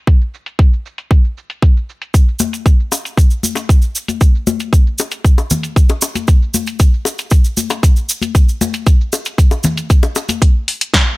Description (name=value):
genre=nu-disco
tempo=116 BPM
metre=4/4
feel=straight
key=none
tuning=none
part: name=electronic kick drum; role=drums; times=0.1-11.0 s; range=none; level=-10 LUFS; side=equal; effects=none
part: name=house drum kit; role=drums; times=0.1-11.0 s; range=hi-hat, shaker, snare drum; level=-20 LUFS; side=equal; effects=low-pass filter on perc, low-pass filter on hats, low-pass filter on snare
part: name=cabasa, congas and bongos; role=percussion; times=2.1-10.4 s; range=none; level=-18 LUFS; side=left 3 dB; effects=none
room=little or no reverb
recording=none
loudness=-12 LUFS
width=side -20 dB against mid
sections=0.0-10.4 A section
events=none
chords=none